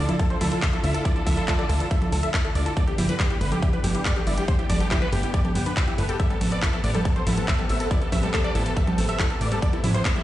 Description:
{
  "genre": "uplifting trance",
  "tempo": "140 BPM",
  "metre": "4/4",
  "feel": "straight",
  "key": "A minor",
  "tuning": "A4 = 442 Hz",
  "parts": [
    { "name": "big supersaw lead", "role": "melody", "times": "0.0-10.2 s", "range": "E4 to E5", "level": "-30 LUFS", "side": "equal", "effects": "phaser, cassette tape, sidechain pumping, low-pass filter, dub echo" },
    { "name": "warm symphonic string section", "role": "sustained chords", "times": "0.0-10.2 s", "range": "C3 to A4", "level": "-31 LUFS", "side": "equal", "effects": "sidechain pumping" },
    { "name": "analog pluck", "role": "arpeggios", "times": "0.0-10.2 s", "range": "E3 to A4", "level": "-32 LUFS", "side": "left 2 dB", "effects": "chorus, sidechain pumping, dub echo" },
    { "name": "plucky analog bass", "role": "bass", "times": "0.0-10.0 s", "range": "G1 to D2", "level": "-26 LUFS", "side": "equal", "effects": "sidechain pumping" },
    { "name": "big-room dance drum kit", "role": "drums", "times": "0.1-10.2 s", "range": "congas, handclaps, hi-hat", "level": "-28 LUFS", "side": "right 1 dB", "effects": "overdrive, studio reverb" },
    { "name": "electronic kick drum", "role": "drums", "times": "0.2-10.1 s", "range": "none", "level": "-24 LUFS", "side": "equal", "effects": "overdrive, studio reverb" }
  ],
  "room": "digital ambience",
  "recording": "played on a big sound system in a bare room, stone room reverb, nothing above 10.5 kHz",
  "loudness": "-21 LUFS",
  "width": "side -14 dB against mid",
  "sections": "0.0-10.2 A section",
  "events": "filter sweep on synth pluck 0.0-10.2",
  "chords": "0.0 Dmadd9; 2.8 G; 6.2 Amadd9"
}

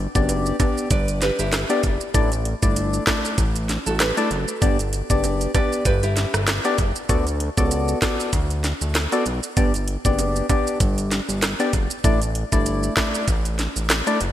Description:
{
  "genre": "dancehall",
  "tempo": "97 BPM",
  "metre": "4/4",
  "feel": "swing 56% on 16ths",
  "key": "D major",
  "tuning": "A4 = 440 Hz",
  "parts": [
    { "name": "fat analog bass", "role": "bass", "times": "0.0-14.3 s", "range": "F#1 to D2", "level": "-24 LUFS", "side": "equal", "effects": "none" },
    { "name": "percussive organ stab", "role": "accompaniment", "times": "0.1-14.2 s", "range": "A3 to D5", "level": "-24 LUFS", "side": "left 2 dB", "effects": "chorus, sidechain pumping" },
    { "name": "island pop drum kit", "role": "drums", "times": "0.2-14.3 s", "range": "hi-hat, kick drum, rim click, snare drum", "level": "-22 LUFS", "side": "equal", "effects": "gated reverb" },
    { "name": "maracas and timbales", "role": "percussion", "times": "0.2-14.3 s", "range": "none", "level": "-32 LUFS", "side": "right 6 dB", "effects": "none" },
    { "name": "nylon-string guitar", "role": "arpeggios", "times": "0.9-6.9 s", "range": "E4 to D5", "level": "-28 LUFS", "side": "right 2 dB", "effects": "digital delay" }
  ],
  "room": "light reverb, digital ambience",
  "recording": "bright 1980s-style digital production",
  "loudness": "-19 LUFS",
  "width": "side -12 dB against mid",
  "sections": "0.0-7.1 A section; 7.1-14.3 A section",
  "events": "none",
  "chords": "0.0 G; 2.1 Asus4; 4.6 G; 7.1 D6; 9.6 G; 12.0 Asus4"
}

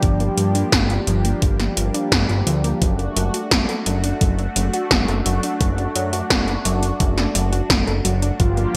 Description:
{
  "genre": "synthwave",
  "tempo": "86 BPM",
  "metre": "4/4",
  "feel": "straight",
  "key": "unclear",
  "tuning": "A4 = 439 Hz",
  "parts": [
    { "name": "warm analog pad", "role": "sustained chords", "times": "0.0-8.8 s", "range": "F3 to G4", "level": "-28 LUFS", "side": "equal", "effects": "chorus, sidechain pumping" },
    { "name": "warbly dusty pluck", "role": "arpeggios", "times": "0.0-8.8 s", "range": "F3 to A4", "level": "-29 LUFS", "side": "equal", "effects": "chorus, cassette tape, delay" },
    { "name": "fat analog bass", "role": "bass", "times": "0.0-8.8 s", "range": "F#1 to G2", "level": "-24 LUFS", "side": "equal", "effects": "none" },
    { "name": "80s electronic pad drums", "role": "drums", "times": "0.0-8.8 s", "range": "hi-hat, snare drum", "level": "-23 LUFS", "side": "equal", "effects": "gated reverb" },
    { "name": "electronic kick drum", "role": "drums", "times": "0.0-8.5 s", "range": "none", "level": "-22 LUFS", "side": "equal", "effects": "overdrive" },
    { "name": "unison lead", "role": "melody", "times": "8.4-8.8 s", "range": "F4", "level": "-26 LUFS", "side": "equal", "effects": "analog chorus" }
  ],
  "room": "moderate plate reverb, RT60 2.5 s",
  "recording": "bright 1980s-style digital production",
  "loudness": "-19 LUFS",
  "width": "mono",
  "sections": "0.0-8.8 A section",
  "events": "none",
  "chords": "0.0 Gm7; 2.8 D/F#"
}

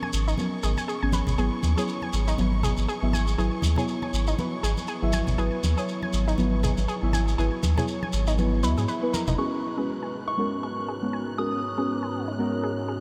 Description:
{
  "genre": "deep house",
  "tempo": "120 BPM",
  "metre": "4/4",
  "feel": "swing 57% on 16ths",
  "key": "G# minor",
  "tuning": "A4 = 440 Hz",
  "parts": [
    { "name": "analog pluck", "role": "arpeggios", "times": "0.0-12.9 s", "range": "D#4 to G#5", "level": "-36 LUFS", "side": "equal", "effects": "chorus, cassette tape, tape echo" },
    { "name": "deep mellow chord stab", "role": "stabs", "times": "0.0-13.0 s", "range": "F#3 to E5", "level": "-31 LUFS", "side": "equal", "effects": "chorus, delay" },
    { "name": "congas", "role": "percussion", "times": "0.0-9.4 s", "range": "none", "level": "-36 LUFS", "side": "equal", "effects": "none" },
    { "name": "dark symphonic violin section", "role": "texture", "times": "0.0-13.0 s", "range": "C#6 to F#6", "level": "-43 LUFS", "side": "equal", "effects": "none" },
    { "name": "warm sub bass", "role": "bass", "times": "0.1-9.4 s", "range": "F#1 to G#2", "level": "-27 LUFS", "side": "equal", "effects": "none" },
    { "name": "shekere", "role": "percussion", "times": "0.1-9.4 s", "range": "none", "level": "-40 LUFS", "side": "equal", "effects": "none" },
    { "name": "soft synth bell", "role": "melody", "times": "9.4-12.1 s", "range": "C#6 to D#6", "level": "-36 LUFS", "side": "equal", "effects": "chorus, phaser, vintage 12-bit sampler grit, delay" },
    { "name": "dark analog pad", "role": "sustained chords", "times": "10.3-13.0 s", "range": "G#2 to A#5", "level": "-38 LUFS", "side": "equal", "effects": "chorus, phaser" }
  ],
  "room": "wet huge ambient reverb, RT60 8.0 s",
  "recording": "dreamy mix soaked in reverb",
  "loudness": "-26 LUFS",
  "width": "mono",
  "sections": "0.0-9.4 A section; 9.4-13.0 B section",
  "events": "filter sweep on synth stab 0.0-9.4; filter sweep on synth arpeggio sound 9.4-13.0",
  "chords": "0.0 G#m11; 1.4 Esus2/G#; 9.4 G#m11"
}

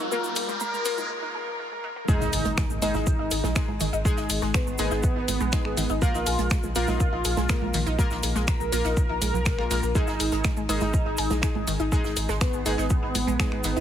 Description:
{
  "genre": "melodic techno",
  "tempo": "122 BPM",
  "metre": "4/4",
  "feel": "straight",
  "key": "G# dorian",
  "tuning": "A4 = 445 Hz",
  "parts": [
    { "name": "lush unison pad", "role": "sustained chords", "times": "0.0-1.1 s", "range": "none", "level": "barely audible", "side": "none", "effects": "none" },
    { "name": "analog pluck", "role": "arpeggios", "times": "0.0-13.8 s", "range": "D#3 to G#5", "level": "-32 LUFS", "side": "right 1 dB", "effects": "chorus, phaser, sidechain pumping, digital delay" },
    { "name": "synth brass stab", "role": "stabs", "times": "0.0-13.8 s", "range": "G#3 to A#4", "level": "-31 LUFS", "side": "left 2 dB", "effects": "chorus, sidechain pumping, digital delay" },
    { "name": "riser and impact", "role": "sound effects", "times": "0.0-4.1 s", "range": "none", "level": "-33 LUFS", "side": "equal", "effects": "none" },
    { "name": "cabasa", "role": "percussion", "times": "0.1-13.8 s", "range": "none", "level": "-36 LUFS", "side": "right 3 dB", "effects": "none" },
    { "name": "house drum kit", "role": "drums", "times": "0.4-13.7 s", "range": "congas, finger snaps, hi-hat", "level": "-30 LUFS", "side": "right 1 dB", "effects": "sidechain pumping on hats, studio reverb, sidechain pumping on perc" },
    { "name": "mellow synth brass", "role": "melody", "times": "0.6-13.8 s", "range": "B3 to A#4", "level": "-32 LUFS", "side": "right 1 dB", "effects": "chorus, phaser, cassette tape, sidechain pumping, digital delay" },
    { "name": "dark detuned synth bell", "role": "second line", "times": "0.6-13.8 s", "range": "B4 to A#5", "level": "-38 LUFS", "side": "equal", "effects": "chorus, phaser, vintage 12-bit sampler grit, sidechain pumping, digital delay" },
    { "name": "electronic kick drum", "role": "drums", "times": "2.1-13.5 s", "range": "none", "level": "-24 LUFS", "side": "equal", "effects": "studio reverb" },
    { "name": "open jazz drum kit", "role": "drums", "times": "2.1-13.8 s", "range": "hi-hat, shaker, snare drum", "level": "-41 LUFS", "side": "right 2 dB", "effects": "none" },
    { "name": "round analog bass", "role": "bass", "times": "2.2-13.8 s", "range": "G#1 to B1", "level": "-29 LUFS", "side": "equal", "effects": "sidechain pumping" }
  ],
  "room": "light reverb, small room ambience",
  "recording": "heavily compressed radio sound, multiband compression, high-pass filter",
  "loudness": "-23 LUFS",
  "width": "side -10 dB against mid",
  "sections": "0.0-2.1 A section; 2.1-13.8 B section",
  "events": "build-up 0.0-2.1; riser 0.0-1.1; filter sweep on synth arpeggio sound 0.0-2.1; filter sweep on analog polysynth 0.0-2.1; filter sweep on synth stab 0.0-2.1; filter sweep 0.0-2.1; break 1.1-2.1; drop 2.1-13.8; impact 2.1-4.1",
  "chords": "0.0 A#m; 2.1 G#m; 6.0 A#5; 10.0 G#m"
}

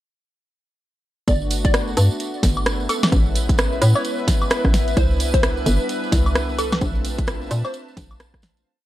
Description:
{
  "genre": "UK garage, two-step garage",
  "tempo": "130 BPM",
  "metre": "4/4",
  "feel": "swing 60% on 16ths",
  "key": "G major",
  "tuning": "A4 = 442 Hz",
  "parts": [
    { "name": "hollow square pluck", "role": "melody", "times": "1.3-7.9 s", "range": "A4 to D5", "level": "-29 LUFS", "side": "left 1 dB", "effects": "ensemble chorus, dub echo" },
    { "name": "warm analog pad", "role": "sustained chords", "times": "1.3-8.6 s", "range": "G3 to F#4", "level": "-30 LUFS", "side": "equal", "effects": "chorus, vintage 12-bit sampler grit, sidechain pumping" },
    { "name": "hollow knocking FM bass", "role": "bass", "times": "1.3-8.6 s", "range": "G1 to Bb2", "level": "-20 LUFS", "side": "equal", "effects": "sidechain pumping" },
    { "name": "electronic kick drum", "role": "drums", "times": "1.3-8.4 s", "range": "none", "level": "-20 LUFS", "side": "equal", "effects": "overdrive" },
    { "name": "house drum kit", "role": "drums", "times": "1.3-8.6 s", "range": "hi-hat, rim click, snare drum, woodblock", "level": "-23 LUFS", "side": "equal", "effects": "overdrive" },
    { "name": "tambourine", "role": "percussion", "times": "1.3-8.6 s", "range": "none", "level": "-34 LUFS", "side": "right 4 dB", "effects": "none" },
    { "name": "granular cloud pad", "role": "texture", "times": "2.8-8.7 s", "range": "B4 to A5", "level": "-29 LUFS", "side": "equal", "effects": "built-in reverb, sidechain pumping" }
  ],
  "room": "little or no reverb",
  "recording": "dark, warm production",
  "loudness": "-17 LUFS",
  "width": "side -14 dB against mid",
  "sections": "1.3-8.7 drop",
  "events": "drop 1.3-8.7; fade-out 6.2-8.7",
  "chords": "1.3 Gmaj9; 2.9 Amaj9; 5.0 Cmaj9; 6.8 Bbmaj9"
}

